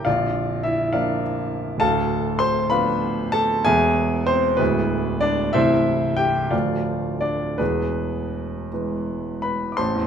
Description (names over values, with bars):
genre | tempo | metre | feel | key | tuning
classical, romantic character piece for solo piano | 52-69 BPM (dotted quarters) | 6/8 | rubato | unclear | A4 = 440 Hz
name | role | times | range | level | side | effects
warm grand piano | solo | 0.0-10.1 s | Bb0 to D6 | -19 LUFS | equal | none
room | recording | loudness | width
moderate recital hall reverb, RT60 1.3 s | close, detailed microphones | -19 LUFS | side -8 dB against mid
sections
0.0-9.8 A section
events
none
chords
0.1 Bb; 1.8 Bm7b5/D; 3.7 E; 4.6 E7/D; 5.6 Am/C; 6.5 Dm; 7.6 E